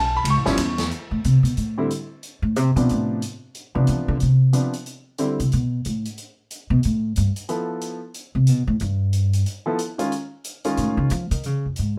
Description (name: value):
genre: modal jazz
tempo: 183 BPM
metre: 4/4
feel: swing 62% on 8ths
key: D dorian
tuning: A4 = 440 Hz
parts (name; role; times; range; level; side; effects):
- clear grand piano; accompaniment; 0.0-5.4, 7.5-11.1 s; C3 to C#6; -26 LUFS; equal; none
- upright bass; bass; 0.0-12.0 s; G1 to F3; -22 LUFS; equal; none
- swinging big-band drum kit; drums; 0.3-11.9 s; hi-hat, ride cymbal, snare drum; -36 LUFS; equal; none
room: light reverb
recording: none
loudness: -22 LUFS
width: mono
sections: 0.9-11.4 A section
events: upright bass solo 0.9-12.0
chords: 0.0 A7b13; 0.9 Dm7; 6.2 Em; 10.1 F7alt; 11.4 Bbm7 (rootless)